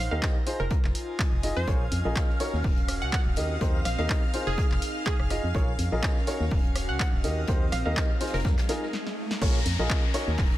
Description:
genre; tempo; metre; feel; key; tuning
piano house; 124 BPM; 4/4; swing 55% on 16ths; Bb minor; A4 = 440 Hz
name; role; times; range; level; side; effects
glassy wavetable pluck; melody; 0.0-8.6 s; Ab4 to Gb5; -36 LUFS; right 2 dB; chorus, dub echo
organ-like FM bass; bass; 0.0-10.6 s; Eb1 to F2; -29 LUFS; equal; sidechain pumping
airy breathy pad; texture; 0.0-10.6 s; C4 to Bb5; -38 LUFS; equal; chorus, sidechain pumping
clear upright piano; riff; 0.1-10.3 s; Eb4 to Eb5; -32 LUFS; equal; sidechain pumping, low-pass filter, dub echo
electronic kick drum; drums; 0.2-10.5 s; none; -26 LUFS; equal; none
punchy analog drum machine; drums; 0.2-10.5 s; crash cymbal, handclaps, hi-hat, rim click, snare drum; -34 LUFS; equal; none
vintage drum kit; drums; 0.2-10.6 s; hi-hat, snare drum; -44 LUFS; left 3 dB; none
string machine, violins; sustained chords; 1.7-10.6 s; F5 to Bb6; -38 LUFS; equal; ensemble chorus, sidechain pumping
riser and downlifter; sound effects; 7.2-10.6 s; none; -37 LUFS; left 1 dB; none
room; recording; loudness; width
little or no reverb; none; -24 LUFS; side -14 dB against mid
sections
0.0-9.4 A section; 9.4-10.6 B section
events
riser 7.2-9.4; drum fill 8.9-9.4; stop 8.9-9.4; drop 9.4-10.6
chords
0.5 Fm7; 1.7 Bbm7; 2.4 Ebm7; 3.4 Cm7/Eb; 4.3 Fm7; 5.5 Bbm7; 6.3 Ebm7; 7.2 Cm7/Eb; 8.2 Fm7; 9.4 Bbm7

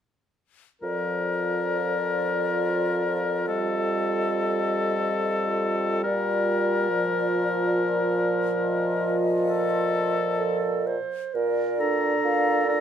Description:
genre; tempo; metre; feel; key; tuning
classical, slow romantic movement for wind quintet; 69 BPM; 3/4; rubato; Bb major; A4 = 445 Hz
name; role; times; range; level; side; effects
mellow hollow concert flute; melody; 0.8-12.8 s; D5 to F5; -30 LUFS; left 6 dB; none
warm oboe; second line; 0.8-12.8 s; A4 to Bb5; -28 LUFS; left 4 dB; none
mellow clarinet; accompaniment; 0.8-12.8 s; F4 to C5; -30 LUFS; right 9 dB; none
warm French horn; accompaniment; 0.8-12.8 s; F3 to D4; -30 LUFS; equal; none
mellow bassoon; bass; 0.8-12.8 s; F2 to Bb2; -28 LUFS; right 1 dB; none
room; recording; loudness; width
moderate large studio reverb, RT60 1.3 s; none; -22 LUFS; side -9 dB against mid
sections
0.8-11.4 A section; 11.4-12.8 B section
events
none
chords
0.8 Bb/F; 3.5 F9; 6.0 Bb; 8.6 F7/Bb; 11.4 Bb

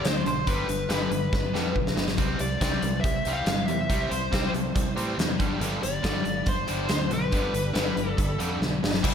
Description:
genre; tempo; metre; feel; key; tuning
classic rock; 140 BPM; 4/4; straight; unclear; A4 = 439 Hz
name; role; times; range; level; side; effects
dark smooth lead guitar; melody; 0.0-8.6 s; B4 to F5; -30 LUFS; left 1 dB; overdrive, slapback echo, digital delay
distorted electric guitar; riff; 0.0-9.1 s; G2 to E4; -30 LUFS; right 1 dB; overdrive, slapback echo
huge arena drum kit; drums; 0.0-9.1 s; crash cymbal, hi-hat, kick drum, snare drum; -27 LUFS; left 1 dB; none
fingered electric bass; bass; 0.1-9.1 s; G1 to A2; -32 LUFS; equal; none
tonewheel organ; sustained chords; 2.2-9.0 s; E3 to B5; -38 LUFS; equal; none
room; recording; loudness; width
moderate lush hall reverb, RT60 1.9 s, small room ambience; big arena sound; -24 LUFS; side -8 dB against mid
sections
0.0-9.0 A section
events
drum fill 1.3-2.2, 8.6-9.0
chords
0.0 G; 2.2 C; 5.4 G

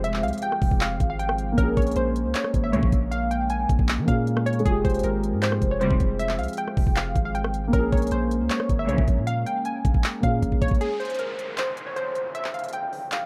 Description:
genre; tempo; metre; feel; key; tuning
hip hop, trap; 156 BPM; 4/4; half-time; unclear; A4 = 440 Hz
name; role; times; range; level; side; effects
glassy wavetable pluck; melody; 0.0-13.3 s; Ab4 to Ab5; -30 LUFS; equal; chorus, phaser, low-pass filter, tape echo
dark baby grand piano; accompaniment; 0.0-10.8 s; Ab3 to Ab4; -32 LUFS; equal; low-pass filter
warbly tape-like pad; sustained chords; 0.0-10.8 s; F3 to G4; -36 LUFS; equal; chorus, built-in reverb
long sustained 808-style bass; bass; 0.0-10.8 s; F1 to F3; -30 LUFS; equal; none
trap drum kit; drums; 0.0-13.2 s; handclaps, hi-hat, kick drum, rim click; -27 LUFS; equal; none
impact and downlifter; sound effects; 0.0, 10.8-13.3 s; none; -42 LUFS; equal; none
rich studio string section; stabs; 2.7-3.0, 5.8-6.1, 8.9-9.2 s; Ab2 to G3; -31 LUFS; equal; none
room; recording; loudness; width
light reverb; none; -24 LUFS; mono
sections
0.0-10.8 A section; 10.8-13.3 B section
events
drum fill 10.4-10.8; break 10.8-13.3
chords
0.0 Fmadd9; 1.6 Bbm7; 4.7 Fmadd9; 7.7 Bbm7; 10.8 N.C.

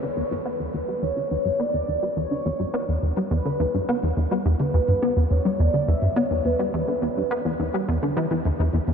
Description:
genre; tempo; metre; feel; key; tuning
ambient, sequencer-driven space music; 105 BPM; 4/4; straight; E dorian; A4 = 440 Hz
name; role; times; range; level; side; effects
mellow horn-like synth lead; melody; 0.0-7.8 s; B4 to E5; -27 LUFS; equal; analog chorus, ping-pong delay
plucky analog bass; riff; 0.0-8.9 s; E2 to B3; -22 LUFS; equal; ensemble chorus, cassette tape, ping-pong delay
room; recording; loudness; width
wet huge ambient reverb, RT60 8.4 s; dreamy mix soaked in reverb; -21 LUFS; side -6 dB against mid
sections
0.0-8.9 A section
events
none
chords
0.0 Em

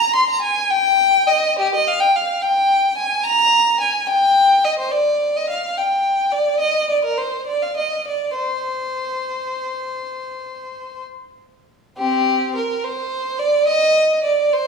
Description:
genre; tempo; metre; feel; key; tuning
classical, baroque-style suite movement for unaccompanied violin; 63-76 BPM (dotted quarters); 12/8; rubato; C minor; A4 = 440 Hz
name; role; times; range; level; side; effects
rich violin; solo; 0.0-14.7 s; C4 to C6; -16 LUFS; equal; none
room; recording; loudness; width
moderate recital hall reverb, RT60 1.5 s; recorded in a church or concert hall, small room ambience; -16 LUFS; side -5 dB against mid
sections
0.0-12.0 A section; 12.0-14.7 B section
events
none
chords
none

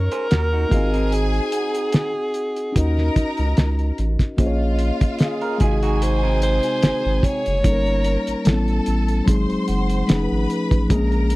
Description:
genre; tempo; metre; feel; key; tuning
lush 1970s-style soul; 74 BPM; 4/4; swing 54% on 16ths; Eb dorian; A4 = 442 Hz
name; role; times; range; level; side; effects
warm alto saxophone; melody; 0.0-8.9 s; Eb4 to Db5; -24 LUFS; equal; none
clear studio string section; second line; 0.0-11.4 s; F4 to Db6; -30 LUFS; left 1 dB; none
mellow tine electric piano; accompaniment; 0.0-11.4 s; C3 to Eb5; -24 LUFS; left 2 dB; none
round analog bass; bass; 0.0-11.4 s; F1 to Eb2; -21 LUFS; equal; none
electric guitar through a small old amp; riff; 0.1-7.4 s; C4 to C5; -28 LUFS; right 4 dB; none
cloth-damped thuddy drum kit; drums; 0.1-11.4 s; hi-hat, kick drum, snare drum; -19 LUFS; equal; none
vibraphone with soft mallets; texture; 1.5-10.5 s; Eb5 to Gb5; -35 LUFS; right 6 dB; none
room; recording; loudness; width
little or no reverb; dry, close 1970s-style studio recording; -17 LUFS; side -20 dB against mid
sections
0.0-4.4 A section; 4.4-11.4 B section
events
none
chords
0.0 Ebm7; 0.7 Ab7; 2.8 Ebm7; 4.4 Bbm7; 5.6 Ab7; 7.6 Eb7/G; 8.5 A9; 9.3 Ab7; 10.1 F7alt

